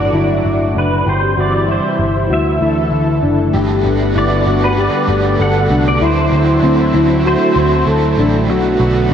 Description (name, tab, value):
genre	dream pop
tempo	97 BPM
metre	4/4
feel	straight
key	G major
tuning	A4 = 440 Hz
part	pedal steel guitar	melody	0.0-7.8 s	B4 to F#5	-19 LUFS	equal	ensemble chorus, diffuse ambient delay
part	lush unison pad	sustained chords	0.0-9.1 s	A2 to F#5	-18 LUFS	right 1 dB	chorus
part	mellow electric guitar	arpeggios	0.0-9.1 s	C4 to A4	-18 LUFS	left 2 dB	ensemble chorus, diffuse ambient delay
part	vintage muted picked electric bass	bass	0.0-9.1 s	F#1 to D2	-16 LUFS	equal	none
part	vibraphone with medium hard mallets	texture	0.0-8.8 s	D4 to B4	-25 LUFS	left 3 dB	diffuse ambient delay
part	overdriven semi-hollow guitar	accompaniment	3.5-9.1 s	B2 to B4	-24 LUFS	right 4 dB	tremolo, wide subtle chorus
room	wet lush hall reverb, RT60 2.6 s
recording	dreamy mix soaked in reverb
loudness	-12 LUFS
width	side -8 dB against mid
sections	0.0-3.5 A section; 3.5-9.1 B section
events	none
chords	0.0 D/G; 1.1 C/G; 2.3 Dsus2; 3.5 Gmaj9; 6.0 D9; 8.5 Bm7